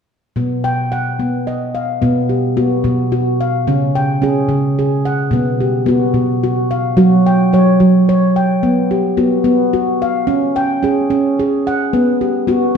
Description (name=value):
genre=world meditative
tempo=73 BPM (dotted quarters)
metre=6/8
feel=straight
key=B lydian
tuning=A4 = 439 Hz
part: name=handpan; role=arpeggios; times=0.4-12.8 s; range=B2 to G5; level=-12 LUFS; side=equal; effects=none
room=wet echo chamber reverb, RT60 1.3 s, studio reverb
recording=dark, warm production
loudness=-13 LUFS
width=side -6 dB against mid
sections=0.4-2.0 A section; 2.0-12.8 B section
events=none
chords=0.4 B; 3.7 C#; 5.3 B5; 7.0 F#5; 8.6 B5; 10.3 C#; 11.9 B5